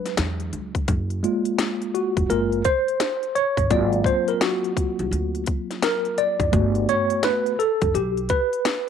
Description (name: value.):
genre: hip hop, jazz-hop.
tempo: 85 BPM.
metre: 4/4.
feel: swing 65% on 16ths.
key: unclear.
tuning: A4 = 441 Hz.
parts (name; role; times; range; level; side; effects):
tine electric piano; accompaniment; 0.0-8.9 s; F#3 to D5; -22 LUFS; equal; overdrive, fast stereo tremolo.
garage drum kit; drums; 0.1-8.9 s; hi-hat, kick drum, snare drum; -25 LUFS; left 2 dB; none.
upright bass; bass; 0.2-8.3 s; F1 to E2; -26 LUFS; right 1 dB; none.
room: light reverb, digital ambience.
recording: 1960s-style stereo.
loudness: -20 LUFS.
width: side -7 dB against mid.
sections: 0.0-8.9 A section.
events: tine electric piano solo 0.0-8.9.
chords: 0.0 E9; 0.9 Gbmaj7; 3.7 Ab13 (rootless); 6.5 Gmaj7.